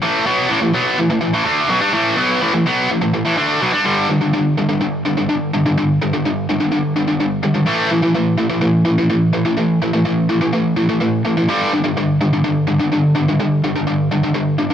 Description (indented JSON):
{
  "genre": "metal",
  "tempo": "126 BPM",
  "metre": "4/4",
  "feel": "straight",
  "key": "unclear",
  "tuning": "A4 = 445 Hz",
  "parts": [
    { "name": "tight distorted guitar", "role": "solo", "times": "0.0-14.7 s", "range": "G2 to D4", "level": "-14 LUFS", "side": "equal", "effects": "distortion" }
  ],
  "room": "light reverb, digital ambience",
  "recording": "none",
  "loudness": "-14 LUFS",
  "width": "side -9 dB against mid",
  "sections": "0.0-3.9 A section; 3.9-14.7 B section",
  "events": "half time 3.9-14.7",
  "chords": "0.0 A5; 3.9 G5; 7.7 A5; 11.5 G5",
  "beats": "| 0.03 0.51 0.98 1.46 | 1.94 2.42 2.90 3.37 | 3.85 4.33 4.81 5.28 | 5.76 6.24 6.72 7.20 | 7.67 8.15 8.63 9.11 | 9.58 10.06 10.54 11.01 | 11.49 11.97 12.44 12.92 | 13.39 13.87 14.35"
}